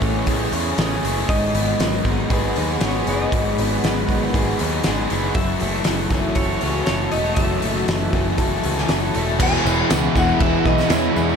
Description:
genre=rock, shoegaze and dream pop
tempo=118 BPM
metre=4/4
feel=straight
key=E major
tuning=A4 = 440 Hz
part: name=clean electric guitar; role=melody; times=0.0-11.4 s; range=B4 to G#5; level=-27 LUFS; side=left 1 dB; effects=ping-pong delay
part: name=dark analog pad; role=sustained chords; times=0.0-11.4 s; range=F#4 to C#6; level=-29 LUFS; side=left 1 dB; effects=chorus
part: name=picked twelve-string acoustic guitar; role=arpeggios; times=0.0-11.4 s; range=D#3 to G#4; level=-30 LUFS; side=left 5 dB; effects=analog chorus, ping-pong delay
part: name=overdriven semi-hollow guitar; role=riff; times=0.0-11.4 s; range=E2 to A4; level=-25 LUFS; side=right 7 dB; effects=reverse reverb
part: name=thick fuzz guitar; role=riff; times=0.0-11.4 s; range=E2 to A4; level=-25 LUFS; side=left 7 dB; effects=distortion, wide subtle chorus
part: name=picked electric bass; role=bass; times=0.0-11.3 s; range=E1 to E2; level=-25 LUFS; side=right 1 dB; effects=none
part: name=loose indie drum kit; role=drums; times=0.0-11.0 s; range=crash cymbal, hi-hat, kick drum, snare drum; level=-23 LUFS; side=equal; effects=none
part: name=overdriven electric guitar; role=riff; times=9.4-11.4 s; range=E2 to E3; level=-25 LUFS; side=equal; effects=none
part: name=tambourine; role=percussion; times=9.5-11.4 s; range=none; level=-38 LUFS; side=right 9 dB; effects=none
room=wet cathedral reverb, RT60 7.3 s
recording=dreamy mix soaked in reverb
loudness=-17 LUFS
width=side -6 dB against mid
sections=0.0-9.4 A section; 9.4-11.4 B section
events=none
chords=0.0 Amaj7; 1.3 G#m7; 5.3 F#m7; 9.4 E

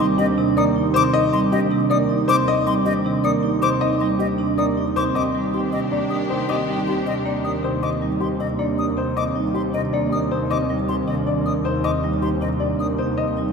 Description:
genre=classical, minimalist pattern music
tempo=314 BPM (eighths)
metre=7/8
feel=straight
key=Eb major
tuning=A4 = 438 Hz
part: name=warm baby grand piano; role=melody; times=0.0-13.4 s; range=G4 to Eb5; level=-25 LUFS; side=left 6 dB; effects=none
part: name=marimba with medium mallets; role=accompaniment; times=0.0-13.5 s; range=C3 to Bb3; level=-24 LUFS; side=right 1 dB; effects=none
part: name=bright silver concert flute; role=arpeggios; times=0.0-12.9 s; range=Eb5 to Eb6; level=-26 LUFS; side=left 5 dB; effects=none
part: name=vibraphone with soft mallets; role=arpeggios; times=0.0-13.5 s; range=C4 to Bb4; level=-24 LUFS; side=right 6 dB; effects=none
part: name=rich symphonic double bass section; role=bass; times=0.0-13.5 s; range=Eb2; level=-29 LUFS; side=equal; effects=none
part: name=mellow soprano saxophone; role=second line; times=5.2-7.6 s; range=G4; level=-35 LUFS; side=right 1 dB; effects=none
part: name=rich symphonic violin section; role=sustained chords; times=5.2-7.6 s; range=D4 to G4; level=-34 LUFS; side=left 1 dB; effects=none
room=wet cathedral reverb, RT60 5.4 s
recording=in a vast, echoing space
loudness=-18 LUFS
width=side -5 dB against mid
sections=0.0-5.2 A section; 5.2-13.5 A section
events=none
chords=0.0 Ebmaj7

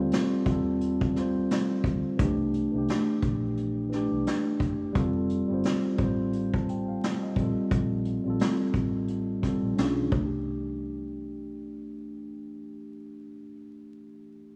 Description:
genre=lo-fi hip hop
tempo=87 BPM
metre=4/4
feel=swing 56% on 16ths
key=unclear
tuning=A4 = 440 Hz
part: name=mellow tine electric piano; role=accompaniment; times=0.0-14.6 s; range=E3 to A5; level=-30 LUFS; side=equal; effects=low-pass filter
part: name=vintage muted fingered electric bass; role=bass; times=0.0-13.3 s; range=F1 to Eb2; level=-37 LUFS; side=equal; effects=none
part: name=vintage brush drum kit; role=drums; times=0.1-10.3 s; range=hi-hat, kick drum, snare drum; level=-33 LUFS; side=equal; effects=vintage 12-bit sampler grit
room=moderate lush hall reverb, RT60 2.5 s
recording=rough home demo mix, vinyl crackle, small room reverb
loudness=-28 LUFS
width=mono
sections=0.0-10.5 A section; 10.5-13.2 B section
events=none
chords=0.0 Cm69; 2.2 C7; 4.9 Fadd9; 7.4 Bbsus2; 9.8 Bdim7; 10.1 C

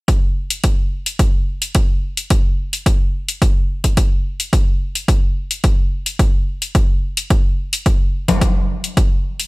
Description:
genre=nu-disco, nu disco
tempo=108 BPM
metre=4/4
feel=straight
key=none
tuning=none
part: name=electronic hi-hat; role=drums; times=0.1-9.5 s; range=none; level=-21 LUFS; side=left 2 dB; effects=studio reverb
part: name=electronic kick drum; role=drums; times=0.1-9.1 s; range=none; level=-15 LUFS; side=equal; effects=studio reverb
part: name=congas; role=percussion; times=8.3-8.4 s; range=none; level=-20 LUFS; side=left 2 dB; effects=none
room=small room ambience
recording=bright 1980s-style digital production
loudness=-15 LUFS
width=side -23 dB against mid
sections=0.1-9.5 A section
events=none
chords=none

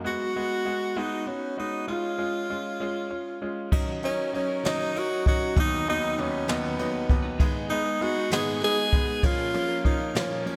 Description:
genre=six-eight pop ballad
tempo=65 BPM (dotted quarters)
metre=6/8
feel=straight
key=unclear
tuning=A4 = 440 Hz
part: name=bright grand piano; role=accompaniment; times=0.0-10.6 s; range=D#2 to F#4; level=-32 LUFS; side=equal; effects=none
part: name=warm tenor saxophone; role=melody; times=0.1-10.6 s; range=B3 to G#4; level=-30 LUFS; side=equal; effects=delay
part: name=direct-recorded clean electric guitar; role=arpeggios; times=3.7-10.6 s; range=G#2 to B4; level=-40 LUFS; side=equal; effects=phaser
part: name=jazz brush drum kit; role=drums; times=3.7-10.6 s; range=crash cymbal, kick drum, ride cymbal, snare drum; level=-29 LUFS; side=equal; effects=none
room=moderate lush hall reverb, RT60 2.6 s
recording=dreamy mix soaked in reverb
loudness=-27 LUFS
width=mono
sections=0.0-3.7 A section; 3.7-10.6 B section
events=none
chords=0.1 G#m7; 1.9 C#; 3.7 D#m7; 5.6 B/D#; 7.4 G#m; 9.2 A#m

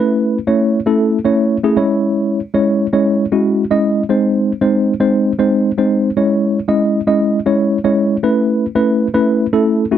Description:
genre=pop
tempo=116 BPM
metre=4/4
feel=straight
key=C# minor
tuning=A4 = 439 Hz
part: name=mellow tine electric piano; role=solo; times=0.0-10.0 s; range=G#3 to D#5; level=-12 LUFS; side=equal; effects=medium stereo tremolo
room=moderate booth ambience, RT60 0.2 s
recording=dry, close 1970s-style studio recording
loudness=-12 LUFS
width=side -10 dB against mid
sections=0.0-10.0 A section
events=none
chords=0.0 Aadd9; 1.8 C#m; 4.1 G#; 6.2 C#m; 8.2 Aadd9

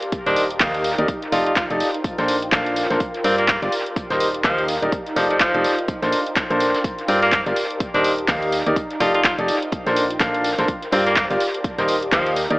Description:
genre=piano house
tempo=125 BPM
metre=4/4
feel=swing 58% on 16ths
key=unclear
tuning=A4 = 440 Hz
part: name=punchy analog drum machine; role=drums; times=0.0-12.6 s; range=handclaps, hi-hat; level=-24 LUFS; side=equal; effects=analog delay
part: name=ethereal airy pad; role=texture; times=0.0-12.6 s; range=Eb4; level=-28 LUFS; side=equal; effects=ensemble chorus, built-in reverb, sidechain pumping
part: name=electronic kick drum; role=drums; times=0.1-12.2 s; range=none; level=-26 LUFS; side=equal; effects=none
part: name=vintage brush drum kit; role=drums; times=0.1-12.5 s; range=hi-hat, snare drum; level=-33 LUFS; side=equal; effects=none
part: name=bright tenor saxophone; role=melody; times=0.3-12.3 s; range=F3 to F4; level=-23 LUFS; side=equal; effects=analog delay
part: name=bright baby grand piano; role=riff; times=0.3-12.6 s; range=D4 to F5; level=-21 LUFS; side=equal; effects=sidechain pumping, analog delay
part: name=solid FM bass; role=bass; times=0.3-12.6 s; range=Eb1 to G2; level=-29 LUFS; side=equal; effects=sidechain pumping
room=moderate plate reverb, RT60 1.4 s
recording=echo-heavy mix, AM radio sound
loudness=-17 LUFS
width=side -23 dB against mid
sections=0.0-12.6 A section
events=none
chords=0.0 Ebmaj7; 1.1 F13; 2.0 Bbmaj9; 3.0 Gm7; 3.7 Ebmaj7; 4.9 F13; 5.9 Bbmaj9; 6.8 Gm7; 7.6 Ebmaj7; 8.8 F13; 9.7 Bbmaj9; 10.7 Gm7; 11.4 Ebmaj7

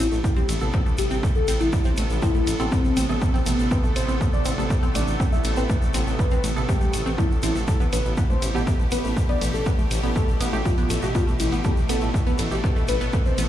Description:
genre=melodic techno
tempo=121 BPM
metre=4/4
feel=straight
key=A minor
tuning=A4 = 440 Hz
part: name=soft octave-layered synth lead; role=melody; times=0.0-13.4 s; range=B3 to E5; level=-28 LUFS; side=left 2 dB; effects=chorus, phaser, sidechain pumping, dub echo
part: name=evolving wavetable pad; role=sustained chords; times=0.1-13.5 s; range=B2 to A4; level=-31 LUFS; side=equal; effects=ensemble chorus, built-in reverb, sidechain pumping
part: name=wide unison pluck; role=arpeggios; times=0.0-13.4 s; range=A3 to C4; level=-31 LUFS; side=right 1 dB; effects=sidechain pumping, dub echo
part: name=dark detuned saw bass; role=bass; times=0.0-13.5 s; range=A1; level=-26 LUFS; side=equal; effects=sidechain pumping
part: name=overtone-sweeping drone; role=drone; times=0.7-13.5 s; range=A2 to A3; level=-38 LUFS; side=right 1 dB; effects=none
part: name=egg shaker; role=percussion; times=0.0-13.5 s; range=none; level=-38 LUFS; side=left 4 dB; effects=none
part: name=electronic kick drum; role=drums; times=0.2-13.2 s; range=none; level=-22 LUFS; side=equal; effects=none
part: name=techno drum kit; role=drums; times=0.5-13.5 s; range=hi-hat, ride cymbal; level=-35 LUFS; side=right 2 dB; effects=sidechain pumping on hats, sidechain pumping on cymbals
part: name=filtered dub chord stab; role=stabs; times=0.6-12.7 s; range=B2 to A4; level=-36 LUFS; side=right 3 dB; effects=none
room=little or no reverb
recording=played on a big sound system in a bare room, stone room reverb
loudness=-20 LUFS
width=side -12 dB against mid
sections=0.0-13.5 A section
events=none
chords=0.0 Amadd9; 7.7 Gadd9/A

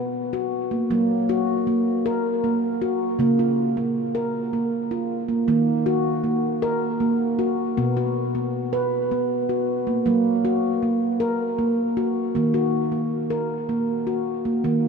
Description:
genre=world meditative, meditative tuned percussion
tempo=52 BPM (dotted quarters)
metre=6/8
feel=straight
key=Eb minor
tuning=A4 = 440 Hz
part: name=handpan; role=solo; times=0.0-14.9 s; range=B2 to B4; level=-20 LUFS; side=equal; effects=diffuse ambient delay
room=wet huge ambient reverb, RT60 7.3 s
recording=in a vast, echoing space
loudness=-20 LUFS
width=side -5 dB against mid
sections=0.0-14.6 A section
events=none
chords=0.0 B5; 0.9 Gb; 3.2 Db; 5.5 Ebm; 7.8 B5; 10.1 Gb; 12.4 Ebm

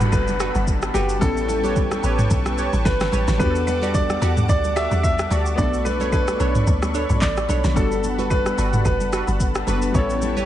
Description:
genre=amapiano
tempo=110 BPM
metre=4/4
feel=swing 55% on 16ths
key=E dorian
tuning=A4 = 443 Hz
part: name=warm grand piano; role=melody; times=0.0-10.5 s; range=G4 to E5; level=-25 LUFS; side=equal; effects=digital delay
part: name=warm analog keys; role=accompaniment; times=0.0-10.5 s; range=G3 to B4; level=-28 LUFS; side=left 4 dB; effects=chorus
part: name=lush unison pad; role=sustained chords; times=0.0-10.5 s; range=G3 to D6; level=-30 LUFS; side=equal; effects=chorus, sidechain pumping
part: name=woody log drum bass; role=bass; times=0.0-10.5 s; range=F#1 to E2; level=-24 LUFS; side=equal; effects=none
part: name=smooth R&B drum kit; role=drums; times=0.0-10.5 s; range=handclaps, kick drum, rim click, shaker, snare drum, toms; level=-23 LUFS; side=equal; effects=none
part: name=congas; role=percussion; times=0.0-10.5 s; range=none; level=-32 LUFS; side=right 2 dB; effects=none
part: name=downlifter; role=sound effects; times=0.0-3.4 s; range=none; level=-35 LUFS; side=left 1 dB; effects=none
part: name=glassy wavetable pluck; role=stabs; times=0.4-10.4 s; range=D4 to D5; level=-29 LUFS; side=right 5 dB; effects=chorus, digital delay
room=little or no reverb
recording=nothing above 10.3 kHz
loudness=-18 LUFS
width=side -12 dB against mid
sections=0.0-10.5 A section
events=none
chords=0.0 Gmaj9; 1.2 A9; 3.4 Em11; 5.6 Bm9; 7.8 Gmaj9; 9.9 A9

